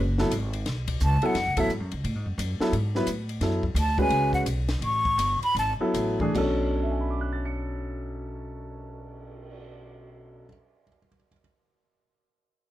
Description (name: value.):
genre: modal jazz.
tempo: 148-174 BPM.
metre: 4/4.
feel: swing 63% on 8ths.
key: B dorian.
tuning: A4 = 440 Hz.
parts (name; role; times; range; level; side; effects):
upright bass; bass; 0.0-10.4 s; F#1 to A2; -28 LUFS; equal; none.
warm concert grand piano; accompaniment; 0.2-11.4 s; B2 to C#7; -28 LUFS; equal; none.
compact cocktail drum kit; drums; 0.2-9.5 s; crash cymbal, cymbal swell, hi-hat, kick drum, ride cymbal, snare drum; -35 LUFS; left 2 dB; none.
breathy hollow jazz flute; melody; 1.0-1.7, 3.8-5.7 s; E5 to C#6; -24 LUFS; equal; none.
room: light reverb.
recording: none.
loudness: -24 LUFS.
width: side -14 dB against mid.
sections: 0.7-6.3 A section; 6.3-9.6 B section.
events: flute solo 0.7-6.3; slowing down 3.4-6.3.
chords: 0.0 F#madd9; 6.3 Bm9.